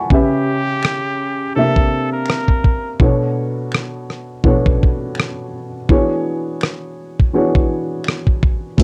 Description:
lo-fi hip hop; 83 BPM; 4/4; swing 58% on 16ths; A4 = 440 Hz
dark upright piano; accompaniment; 0.0-8.8 s; A2 to C#6; -21 LUFS; equal; cassette tape
trumpet with straight mute; melody; 0.1-3.0, 8.8 s; E4 to Bb4; -24 LUFS; equal
dusty soul sampler-style drum kit; drums; 0.1-8.8 s; hi-hat, kick drum, rim click; -17 LUFS; equal
finger snap; percussion; 0.8-8.2 s; -35 LUFS; equal
light reverb; worn, warbling old tape, cassette tape, warbly pitch drift; -17 LUFS; mono
0.0-8.8 A section
break 0.0-8.8; hi-hats muted 5.9-8.8
0.1 C#m7b5; 1.6 C9; 3.0 Bm9; 5.9 E13

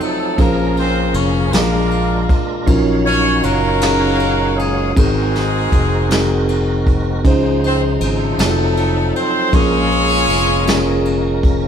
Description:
slow gospel; 52 BPM (dotted quarters); 6/8; straight; A4 = 440 Hz
clear horn section; melody; 0.0-11.4 s; Ab3 to Db5; -19 LUFS; left 1 dB
mellow tine electric piano; accompaniment; 0.0-11.7 s; Ab2 to F5; -19 LUFS; equal; slow stereo tremolo
tonewheel organ; sustained chords; 0.0-11.7 s; Db3 to F5; -24 LUFS; right 3 dB; fast rotary speaker, chorus vibrato
vintage brush drum kit; drums; 0.0-11.6 s; kick drum, ride cymbal, snare drum; -20 LUFS; equal
fingered electric bass; bass; 0.4-11.7 s; F1 to Db2; -19 LUFS; left 1 dB
moderate stone room reverb, RT60 1.4 s; band playing live in one room; -13 LUFS; side -8 dB against mid
0.0-11.7 A section
0.4 Bbm9; 1.5 Bb7; 2.7 Ebm9; 5.0 Ab9; 7.3 Dbmaj9; 8.4 F7b9; 9.5 Bbm7

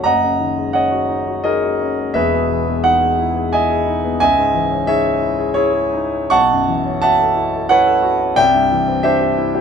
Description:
classical, impressionist solo piano; 88 BPM; 3/4; rubato; A4 = 441 Hz
warm concert grand piano; solo; 0.0-9.6 s; E1 to C#6; -14 LUFS; equal
light reverb; -14 LUFS; side -7 dB against mid
0.0-9.6 A section
0.1 F#69; 2.2 Emaj7; 4.2 C#madd9; 6.3 B11; 8.4 Cadd9

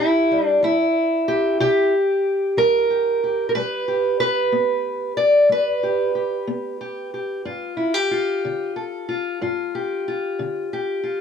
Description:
acoustic country blues, solo or duo; 62 BPM (dotted quarters); 12/8; straight; G mixolydian; A4 = 441 Hz
fingerpicked steel-string acoustic guitar; solo; 0.0-11.2 s; G2 to D5; -18 LUFS; equal
moderate booth ambience, RT60 0.2 s; -18 LUFS; side -7 dB against mid
0.0-11.2 A section
0.0 C7; 3.5 G7

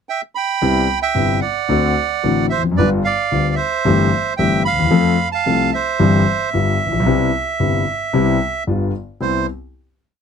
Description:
tango; 112 BPM; 4/4; rubato; C major; A4 = 440 Hz
bandoneon; melody; 0.1-9.5 s; B4 to B5; -19 LUFS; right 6 dB
warm concert grand piano; accompaniment; 0.6-9.4 s; G1 to A4; -16 LUFS; left 3 dB
light reverb; close, detailed microphones; -15 LUFS; side -7 dB against mid
0.0-0.6 pickup bar; 0.6-9.2 A section; 9.2-10.2 final chord
0.0 Em (rootless); 0.6 Cmaj7; 1.7 D7; 2.8 G7; 3.9 C6/G; 4.9 F; 6.0 C/G; 6.5 G7; 7.1 Cmaj7; 8.7 G7; 9.2 Cmaj7

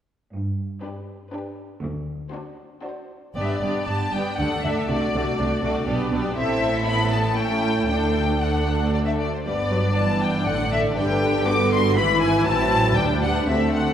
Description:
quick classical-period movement for string orchestra; 119 BPM; 3/4; rubato; G major; A4 = 444 Hz
clear studio cello section; bass; 0.3-13.9 s; D2 to D3; -27 LUFS; right 1 dB
rich studio violin section; melody; 0.8-13.9 s; B4 to D6; -25 LUFS; left 3 dB
rich studio violin section; second line; 0.8-13.9 s; B3 to D5; -28 LUFS; left 2 dB
warm studio viola section; accompaniment; 0.8-13.9 s; D3 to E4; -25 LUFS; right 2 dB
rich studio double bass section; bass; 3.4-13.9 s; G1 to D2; -27 LUFS; right 1 dB
wet scoring stage reverb, RT60 1.9 s; heard from further back in the room; -19 LUFS; side -9 dB against mid
0.3-3.4 A section; 3.4-13.9 B section
0.3 G; 1.8 D7; 3.4 G; 4.4 D; 4.9 D7/C; 5.9 G/B; 6.4 Am; 7.4 A7; 7.9 D; 9.5 G; 10.5 D/A; 11.0 G; 12.0 E/G#; 12.5 Am; 13.0 G/D

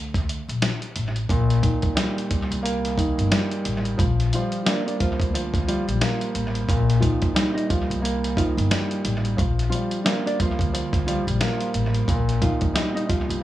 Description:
hip hop, boom-bap hip-hop; 89 BPM; 4/4; swing 59% on 16ths; Bb major; A4 = 440 Hz
upright bass; bass; 0.0-13.4 s; G1 to D2; -24 LUFS; left 1 dB
dusty soul sampler-style drum kit; drums; 0.1-13.4 s; hi-hat, kick drum, snare drum; -24 LUFS; equal; vintage 12-bit sampler grit, dub echo
dark concert grand piano; accompaniment; 1.3-13.4 s; Bb2 to Bb3; -27 LUFS; equal; high-pass filter, low-pass filter
nylon-string guitar; melody; 4.3-13.4 s; F3 to Eb5; -29 LUFS; right 2 dB; high-pass filter, low-pass filter, dub echo
light reverb, small room reverb; echo-heavy mix, studio ambience; -20 LUFS; side -14 dB against mid
0.0-4.0 A section; 4.0-13.4 A section
break 0.0-4.0
0.0 Bb; 1.3 Cm7/Bb; 4.0 Bb6; 6.7 Cm7/Bb; 9.4 Bb6; 12.1 Cm7/Bb (rootless)

